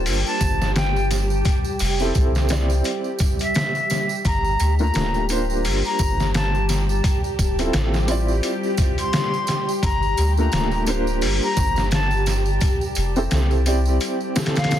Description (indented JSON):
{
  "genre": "trip hop",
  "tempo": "86 BPM",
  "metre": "4/4",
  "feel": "swing 58% on 16ths",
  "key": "G dorian",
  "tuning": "A4 = 440 Hz",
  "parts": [
    { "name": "felt-muted upright piano", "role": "accompaniment", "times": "0.0-14.8 s", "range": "E3 to D5", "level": "-26 LUFS", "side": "equal", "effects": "tremolo, tape echo" },
    { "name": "string machine, cellos", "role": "sustained chords", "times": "0.0-14.8 s", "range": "G4", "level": "-28 LUFS", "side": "equal", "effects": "phaser, ensemble chorus" },
    { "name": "soft dub sub bass", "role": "bass", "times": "0.0-14.0 s", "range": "D1 to D2", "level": "-22 LUFS", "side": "equal", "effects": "none" },
    { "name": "trip hop sampler-style drum kit", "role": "drums", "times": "0.1-14.8 s", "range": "hi-hat, kick drum, snare drum", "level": "-23 LUFS", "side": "equal", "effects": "overdrive" },
    { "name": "tambourine", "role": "percussion", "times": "0.1-14.8 s", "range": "none", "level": "-34 LUFS", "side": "right 8 dB", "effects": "none" },
    { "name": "silver concert flute", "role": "melody", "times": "0.3-14.8 s", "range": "E5 to C6", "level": "-26 LUFS", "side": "left 2 dB", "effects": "vintage 12-bit sampler grit, tape echo" }
  ],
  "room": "digital ambience",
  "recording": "dense, heavily limited modern master, vinyl crackle",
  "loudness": "-18 LUFS",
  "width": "side -11 dB against mid",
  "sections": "0.0-14.8 A section",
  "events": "break 14.0-14.8",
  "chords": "0.0 Gm7; 1.5 Fmaj7 (rootless); 4.2 Gm7; 7.0 Dm7; 9.8 Gm7; 12.6 Fmaj7"
}